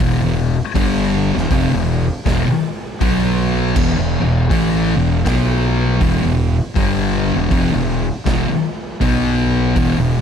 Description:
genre	stoner and doom metal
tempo	80 BPM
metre	4/4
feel	swing 60% on 8ths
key	E minor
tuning	A4 = 438 Hz
part	thick fuzz guitar	riff	0.0-10.2 s	E2 to B3	-18 LUFS	left 9 dB	distortion
part	thick fuzz guitar	riff	0.0-10.2 s	E2 to B3	-20 LUFS	right 9 dB	distortion
part	fuzz fingered electric bass	bass	0.0-10.2 s	E1 to B1	-22 LUFS	equal	overdrive
part	raw garage drum kit	drums	0.0-10.0 s	crash cymbal, hi-hat, kick drum, snare drum	-22 LUFS	equal	none
room	small room reverb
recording	dark, warm production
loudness	-14 LUFS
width	side -7 dB against mid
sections	0.0-10.2 A section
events	none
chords	0.0 Em; 3.0 B5; 3.8 E5; 5.3 B5; 6.0 Em; 9.0 B5

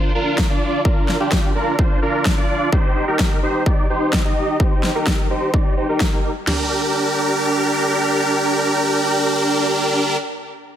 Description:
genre	EDM, festival progressive house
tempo	128 BPM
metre	4/4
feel	straight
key	G minor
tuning	A4 = 435 Hz
part	dense compressed supersaw	riff	0.0-10.2 s	D4 to Eb5	-18 LUFS	right 1 dB	sidechain pumping, low-pass filter, tape echo
part	big-room dance drum kit	drums	0.4-6.6 s	crash cymbal, kick drum, snare drum, toms	-19 LUFS	equal	overdrive
part	electronic snare drum	drums	0.4-6.1 s	none	-24 LUFS	left 1 dB	overdrive
room	light reverb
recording	none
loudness	-16 LUFS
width	side -10 dB against mid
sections	0.0-6.5 A section; 6.5-10.2 B section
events	filter sweep on supersaw synth 0.0-6.5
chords	0.0 Bb; 2.7 Cm; 6.5 Gm

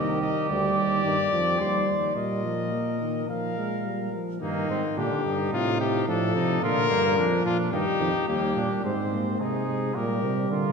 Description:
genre	classical, imitative canzona for brass ensemble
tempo	108 BPM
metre	4/4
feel	straight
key	Eb major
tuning	A4 = 438 Hz
part	warm cornet	melody	0.0-10.7 s	Eb4 to F5	-28 LUFS	left 6 dB	none
part	mellow trumpet	second line	0.0-10.7 s	Bb3 to C5	-31 LUFS	right 4 dB	none
part	mellow euphonium	accompaniment	0.0-10.7 s	C3 to Bb3	-29 LUFS	right 2 dB	none
part	clear tuba	bass	0.0-10.7 s	C2 to D3	-30 LUFS	right 2 dB	none
room	wet church reverb, RT60 2.7 s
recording	minimal, uncompressed stereo recording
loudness	-23 LUFS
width	side -5 dB against mid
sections	0.0-4.4 A section; 4.4-8.8 B section; 8.8-10.7 A section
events	none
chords	0.0 Cm; 2.2 Bbsus4; 3.3 Bb5; 4.4 Eb/G; 5.5 F/A; 6.6 Bb; 7.7 Eb; 8.8 Ab; 10.0 Eb/Bb (rootless)

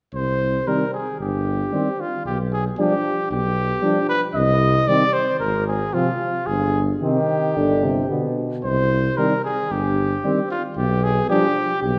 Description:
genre	classical, brass quintet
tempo	113 BPM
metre	4/4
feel	straight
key	C minor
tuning	A4 = 440 Hz
part	clear trumpet	melody	0.1-12.0 s	F4 to Eb5	-25 LUFS	equal	none
part	warm tuba	bass	0.1-12.0 s	G1 to C2	-26 LUFS	equal	none
part	mellow flugelhorn	second line	0.7-11.5 s	B3 to D4	-31 LUFS	equal	none
part	warm French horn	accompaniment	0.7-11.5 s	B2 to G3	-27 LUFS	equal	none
part	warm trombone	accompaniment	0.7-11.5 s	C3 to F3	-31 LUFS	equal	none
room	wet recital hall reverb, RT60 1.7 s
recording	none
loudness	-21 LUFS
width	mono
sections	0.1-12.0 A section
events	none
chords	0.1 Cm; 2.3 G7/B; 4.3 Cm; 5.4 Fm/Ab; 6.5 Cm/G; 7.6 G; 8.6 Cm; 10.8 G7/B

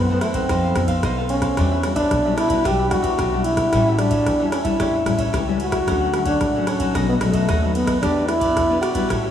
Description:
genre	samba and choro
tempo	112 BPM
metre	4/4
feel	straight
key	unclear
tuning	A4 = 441 Hz
part	breathy trombone	melody	0.0-9.3 s	A3 to G4	-20 LUFS	right 1 dB	none
part	cavaquinho	accompaniment	0.0-9.3 s	D4 to F#5	-29 LUFS	right 1 dB	none
part	nylon-string guitar	accompaniment	0.0-9.3 s	F#2 to A4	-25 LUFS	left 5 dB	none
part	upright bass	bass	0.0-9.3 s	A1 to F#2	-24 LUFS	equal	none
part	electro analog drum machine	drums	0.2-9.2 s	kick drum, ride cymbal, rim click	-26 LUFS	equal	none
room	wet cathedral reverb, RT60 5.5 s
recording	in a vast, echoing space, small room ambience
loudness	-17 LUFS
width	side -9 dB against mid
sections	0.0-9.3 A section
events	none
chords	0.5 F7#11; 1.6 Em9; 3.7 A7; 5.9 Dmaj7; 7.0 B7; 8.0 Em7

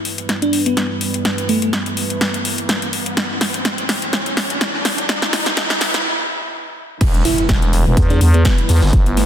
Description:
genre	bass house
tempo	125 BPM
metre	4/4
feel	swing 55% on 16ths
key	E minor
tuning	A4 = 440 Hz
part	dark analog pad	sustained chords	0.0-9.3 s	G3 to B4	-26 LUFS	right 2 dB	chorus, sidechain pumping
part	riser and impact	sound effects	1.1-8.9 s	none	-25 LUFS	equal	none
part	big-room dance drum kit	drums	0.1-9.3 s	crash cymbal, hi-hat, snare drum	-20 LUFS	equal	none
part	bell-like FM electric piano	melody	0.4-1.7, 7.2-9.3 s	A3 to E4	-21 LUFS	equal	chorus, ping-pong delay
part	growling FM bass	bass	7.0-9.3 s	E1 to E2	-14 LUFS	equal	overdrive, sidechain pumping
part	electronic kick drum	drums	7.0-9.0 s	none	-15 LUFS	equal	none
part	street-band drum kit	drums	7.0-9.3 s	hi-hat, snare drum	-30 LUFS	equal	sidechain pumping on hats, high-pass filter on hats, high-pass filter on snare, high-pass filter on room
room	light reverb, digital ambience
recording	dense, heavily limited modern master, high-pass filter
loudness	-15 LUFS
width	side -10 dB against mid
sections	0.0-7.0 A section; 7.0-9.3 B section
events	build-up 0.0-7.0; drum fill 0.0-6.1; filter sweep on analog synth pad 0.0-7.0; filter sweep 0.0-7.0; riser 1.1-6.1; break 6.1-7.0; drop 7.0-9.3; impact 7.0-8.9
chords	0.0 Em

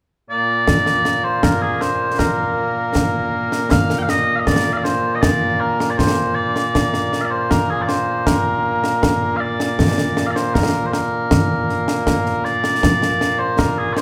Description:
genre	scottish traditional, Scottish pipe music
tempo	79 BPM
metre	2/4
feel	straight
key	Bb major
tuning	A4 = 440 Hz
part	mellow small bagpipes	melody	0.3-14.0 s	Bb2 to G5	-20 LUFS	equal	none
part	concert snare drum and concert bass drum	drums	0.7-14.0 s	none	-22 LUFS	equal	none
room	moderate recital hall reverb, RT60 1.8 s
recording	recorded in a church or concert hall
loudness	-18 LUFS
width	mono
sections	0.7-12.8 A section; 12.8-14.0 A section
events	none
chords	none

